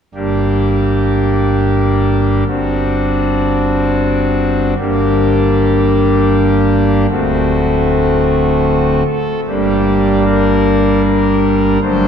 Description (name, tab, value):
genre	classical, chorale-style piece for pipe organ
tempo	77 BPM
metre	3/4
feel	straight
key	G minor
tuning	A4 = 436 Hz
part	pipe organ, foundations	solo	0.1-12.1 s	D1 to C5	-11 LUFS	equal	none
room	wet cathedral reverb, RT60 4.0 s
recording	minimal, uncompressed stereo recording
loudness	-11 LUFS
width	side -8 dB against mid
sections	0.2-9.5 A section; 9.5-12.1 B section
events	none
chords	0.2 Gm; 2.5 D7/G; 4.8 Gm; 7.1 D7; 9.5 Gm